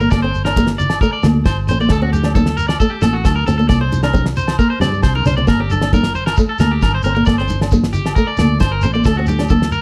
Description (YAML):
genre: highlife guitar band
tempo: 134 BPM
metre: 4/4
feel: straight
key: G minor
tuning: A4 = 441 Hz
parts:
  - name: nylon-string guitar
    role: accompaniment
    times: 0.0-9.7 s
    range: A3 to D4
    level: -21 LUFS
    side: equal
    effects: none
  - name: electric guitar at the edge of break-up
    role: arpeggios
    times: 0.0-9.8 s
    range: F#4 to D5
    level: -24 LUFS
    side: equal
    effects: slapback echo
  - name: fingered electric bass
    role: bass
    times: 0.0-9.8 s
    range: G1 to G2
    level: -21 LUFS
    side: equal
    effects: none
  - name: shekere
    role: percussion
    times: 0.0-9.8 s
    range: none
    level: -29 LUFS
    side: equal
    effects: none
  - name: damped 70s drum kit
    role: drums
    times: 0.1-9.7 s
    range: kick drum, snare drum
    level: -20 LUFS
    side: equal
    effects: none
  - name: agogo bells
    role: percussion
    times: 0.1-9.5 s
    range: none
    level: -32 LUFS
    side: equal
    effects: none
  - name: congas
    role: percussion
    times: 0.1-9.6 s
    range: none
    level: -27 LUFS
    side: equal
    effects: none
room: light reverb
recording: none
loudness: -15 LUFS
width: mono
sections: 0.0-9.8 A section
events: drum fill 4.9-5.5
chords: 0.0 Gm; 1.9 D5; 3.7 C5; 5.5 Gm; 9.1 D